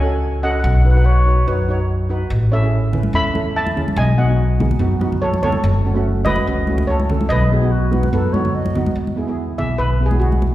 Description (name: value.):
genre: calypso.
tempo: 144 BPM.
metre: 4/4.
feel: straight.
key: E major.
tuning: A4 = 440 Hz.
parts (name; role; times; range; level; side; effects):
steel pan; melody; 0.0-10.3 s; F#4 to B5; -22 LUFS; equal; none.
steel pan; accompaniment; 0.0-10.5 s; A3 to C#5; -24 LUFS; right 3 dB; none.
upright bass; bass; 0.0-10.5 s; F#1 to F#2; -17 LUFS; equal; none.
mellow reedy baroque flute; second line; 0.9-1.8, 7.5-9.0 s; F#4 to D#5; -25 LUFS; left 2 dB; none.
congas; percussion; 2.9-10.5 s; none; -23 LUFS; equal; none.
room: wet concert hall reverb, RT60 1.8 s.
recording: heard from further back in the room.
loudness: -15 LUFS.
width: side -14 dB against mid.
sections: 0.0-9.0 A section; 9.0-10.5 B section.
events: steel pan solo 9.0-10.5.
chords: 0.0 F#m/C#; 0.7 Badd9; 2.3 A; 4.0 B7; 5.6 F#m; 7.3 B; 9.0 Eadd9.